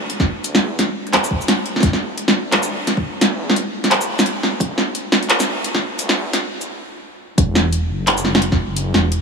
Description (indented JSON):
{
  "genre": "half-time drum and bass",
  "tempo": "173 BPM",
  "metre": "4/4",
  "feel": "swing 60% on 16ths, half-time",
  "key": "unclear",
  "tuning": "A4 = 440 Hz",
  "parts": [
    { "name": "dark detuned saw bass", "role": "bass", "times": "0.0-9.2 s", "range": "E1 to E2", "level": "-25 LUFS", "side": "equal", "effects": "tube saturation, high-pass filter" },
    { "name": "drum and bass drum kit", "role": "drums", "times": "0.1-9.2 s", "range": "handclaps, hi-hat, shaker, snare drum", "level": "-17 LUFS", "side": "equal", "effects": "none" },
    { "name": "electronic kick drum", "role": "drums", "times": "0.2-8.6 s", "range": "none", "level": "-17 LUFS", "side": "equal", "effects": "none" }
  ],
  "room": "moderate huge ambient reverb, RT60 4.2 s",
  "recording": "high-pass filter",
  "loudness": "-16 LUFS",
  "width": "side -5 dB against mid",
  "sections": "0.0-7.4 A section; 7.4-9.2 B section",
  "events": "build-up 0.0-7.4; stop 6.7-7.4; drop 7.4-9.2",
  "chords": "none",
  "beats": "0.10 | 0.44 0.79 1.14 1.48 | 1.83 2.18 2.52 2.87 | 3.22 3.56 3.91 4.26 | 4.61 4.95 5.30 5.64 | 5.99 6.34 6.69 7.03 | 7.38 7.73 8.07 8.42 | 8.77 9.11"
}